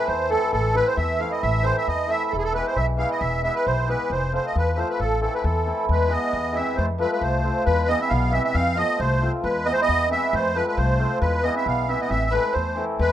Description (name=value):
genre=balkan folk, Balkan wedding band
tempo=135 BPM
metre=2/4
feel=swing 54% on 16ths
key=A hungarian minor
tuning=A4 = 437 Hz
part: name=musette accordion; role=melody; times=0.0-13.1 s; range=G#4 to F5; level=-23 LUFS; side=right 1 dB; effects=plate reverb
part: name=hammered dulcimer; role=accompaniment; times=0.0-13.0 s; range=E3 to F4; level=-26 LUFS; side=equal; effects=plate reverb
part: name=upright bass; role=bass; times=0.1-13.1 s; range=E1 to F2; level=-25 LUFS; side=left 1 dB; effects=none
part: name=clear clarinet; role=second line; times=5.9-13.1 s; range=G#3 to C4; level=-31 LUFS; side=equal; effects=none
room=light reverb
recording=rough home demo mix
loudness=-20 LUFS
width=side -11 dB against mid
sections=0.0-5.9 A section; 5.9-13.0 B section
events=none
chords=0.0 Am; 2.3 E; 4.1 F; 5.0 Am; 5.9 E; 6.8 F; 7.7 E; 8.6 F; 9.4 E; 10.3 F; 11.2 E; 12.1 Am